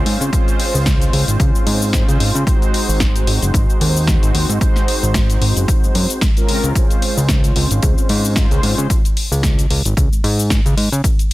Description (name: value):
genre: nu-disco, nu disco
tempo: 112 BPM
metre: 4/4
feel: swing 56% on 16ths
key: Db major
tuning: A4 = 440 Hz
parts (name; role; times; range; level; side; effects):
- mellow synth brass; accompaniment; 0.0-8.9 s; Ab3 to C5; -22 LUFS; right 1 dB; chorus, sidechain pumping, slapback echo
- fat analog bass; bass; 0.0-11.0 s; Gb1 to Db3; -17 LUFS; equal; tube saturation
- house drum kit; drums; 0.1-11.3 s; hi-hat, shaker, snare drum; -22 LUFS; left 2 dB; small room ambience
- electronic kick drum; drums; 0.3-11.2 s; none; -16 LUFS; equal; small room ambience
room: little or no reverb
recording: dense, heavily limited modern master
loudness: -13 LUFS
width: side -18 dB against mid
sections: 0.0-11.3 A section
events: none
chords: 0.0 Dbmaj7; 2.5 Ab7; 6.5 Dbmaj7